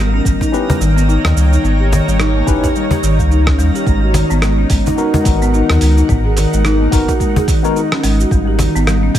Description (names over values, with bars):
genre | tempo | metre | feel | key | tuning
organic downtempo | 108 BPM | 4/4 | swing 58% on 16ths | G# minor | A4 = 440 Hz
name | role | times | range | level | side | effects
bowed-like drone | sustained chords | 0.0-9.2 s | D#4 to G5 | -21 LUFS | right 1 dB | built-in reverb, sidechain pumping
folk marimba with soft mallets | arpeggios | 0.0-9.2 s | D#3 to G#4 | -18 LUFS | left 1 dB | tape echo
warm sub bass | bass | 0.0-9.2 s | G#1 to D#2 | -14 LUFS | equal | tube saturation
twinkling granular texture | texture | 0.0-3.9 s | A#3 to A#5 | -27 LUFS | right 2 dB | built-in reverb
dusty soul sampler-style drum kit | drums | 0.3-9.2 s | cabasa, hi-hat, rim click, toms | -22 LUFS | right 1 dB | overdrive
electronic kick drum | drums | 0.3-9.2 s | none | -17 LUFS | equal | overdrive
cajon | percussion | 0.4-9.0 s | none | -19 LUFS | left 2 dB | none
tine electric piano | accompaniment | 0.5-7.8 s | B3 to B4 | -21 LUFS | left 3 dB | slow stereo tremolo, sidechain pumping, tape echo
room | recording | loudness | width
light reverb, digital ambience | none | -11 LUFS | side -11 dB against mid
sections
0.0-3.9 A section; 3.9-9.2 B section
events
none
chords
0.0 D#7b13/G#; 3.9 G#m7; 8.3 D#7b13/G#